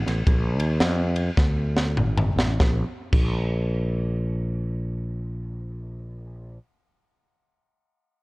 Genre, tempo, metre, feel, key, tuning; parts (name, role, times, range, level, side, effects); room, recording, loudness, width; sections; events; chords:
uptempo gospel; 92-115 BPM; 4/4; swing 62% on 8ths; Bb major; A4 = 439 Hz
fretless electric bass; bass; 0.0-6.6 s; Ab1 to F2; -25 LUFS; equal
crisp fusion drum kit; drums; 0.1-3.3 s; crash cymbal, kick drum, ride cymbal, snare drum, toms; -23 LUFS; equal
little or no reverb; worn, warbling old tape, cassette tape, warbly pitch drift; -21 LUFS; side -24 dB against mid
0.0-2.6 A section; 2.6-7.8 B section
slowing down 0.0-2.6; drum fill 1.4-2.6